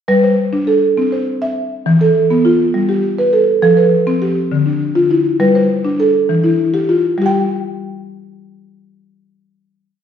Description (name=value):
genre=southern african traditional, mbira-style interlocking cycle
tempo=135 BPM (dotted quarters)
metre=12/8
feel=straight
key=G mixolydian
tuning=A4 = 439 Hz
part: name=buzzing marimba with medium mallets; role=solo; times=0.1-10.0 s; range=D3 to G5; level=-12 LUFS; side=equal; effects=none
room=wet recital hall reverb, RT60 1.3 s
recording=recorded in a church or concert hall, nothing above 10.9 kHz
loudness=-12 LUFS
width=side -8 dB against mid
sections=0.1-7.2 A section; 7.2-10.0 final note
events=none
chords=0.1 G; 1.0 C; 1.9 E5; 2.7 G; 3.6 F; 4.5 Dm; 5.4 G; 6.3 Em; 7.2 N.C.